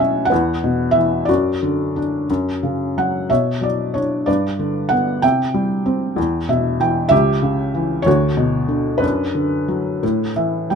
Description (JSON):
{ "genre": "classical, lyrical solo piano", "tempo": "58-64 BPM (dotted quarters)", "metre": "6/8", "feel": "rubato", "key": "B minor", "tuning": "A4 = 439 Hz", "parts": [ { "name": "felt-muted upright piano", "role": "solo", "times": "0.0-10.8 s", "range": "C#2 to G5", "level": "-16 LUFS", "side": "equal", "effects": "none" } ], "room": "light reverb", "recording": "close, detailed microphones", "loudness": "-16 LUFS", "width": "side -6 dB against mid", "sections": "0.0-10.8 A section", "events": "felt piano fill 6.2-7.1, 10.0-10.8", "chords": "0.3 E5; 1.3 D/F#; 2.3 F#5; 3.3 Bmadd9; 4.3 G; 5.2 C; 6.2 Em; 7.1 C#dim; 8.1 Bm/D; 9.0 Bm/F#; 10.0 A5", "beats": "0.31 | 1.29 2.29 | 3.30 4.28 | 5.24 6.18 | 7.12 8.07 | 9.03 10.03" }